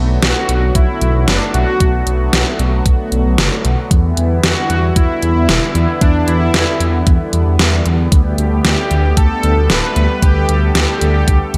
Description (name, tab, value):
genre	synthwave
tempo	114 BPM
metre	4/4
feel	straight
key	unclear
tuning	A4 = 443 Hz
part	lush unison pad	sustained chords	0.0-11.6 s	D3 to A4	-24 LUFS	equal	chorus, phaser, sidechain pumping
part	dark detuned saw bass	bass	0.0-11.6 s	D1 to E2	-17 LUFS	equal	none
part	soft supersaw	melody	0.2-11.6 s	D4 to B4	-22 LUFS	equal	tape echo
part	pop drum kit	drums	0.2-11.6 s	hi-hat, snare drum	-20 LUFS	equal	overdrive, gated reverb
part	electronic kick drum	drums	0.8-11.4 s	none	-14 LUFS	equal	overdrive
room	light reverb, digital ambience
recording	none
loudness	-14 LUFS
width	mono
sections	0.0-11.6 A section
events	none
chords	0.0 Bm7; 3.9 Em7; 8.1 Gadd9/D